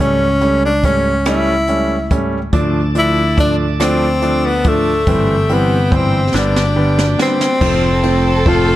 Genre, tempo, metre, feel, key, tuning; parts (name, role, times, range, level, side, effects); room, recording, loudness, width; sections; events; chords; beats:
six-eight pop ballad; 47 BPM (dotted quarters); 6/8; straight; A4 = 439 Hz
clear tenor saxophone; melody; 0.0-8.8 s; A3 to F4; -16 LUFS; left 1 dB
warm concert grand piano; accompaniment; 0.0-8.7 s; D3 to D4; -18 LUFS; right 1 dB
fingered electric bass; bass; 0.0-8.8 s; F1 to D2; -18 LUFS; equal
jazz brush drum kit; drums; 0.4-8.7 s; crash cymbal, hi-hat, kick drum, ride cymbal, rim click, snare drum; -20 LUFS; equal
tonewheel organ; sustained chords; 2.5-8.8 s; C3 to A5; -26 LUFS; right 1 dB; overdrive, slow rotary speaker
warm studio violin section; second line; 7.6-8.8 s; A4; -21 LUFS; right 2 dB
light reverb, small room ambience; -12 LUFS; side -14 dB against mid
0.0-7.6 A section; 7.6-8.8 B section
drum fill 6.3-7.6
0.0 A7/C#; 2.5 Dm; 5.1 C/G; 6.3 G; 7.6 F
| 0.00 1.26 | 2.54 3.81 | 5.07 6.34 | 7.61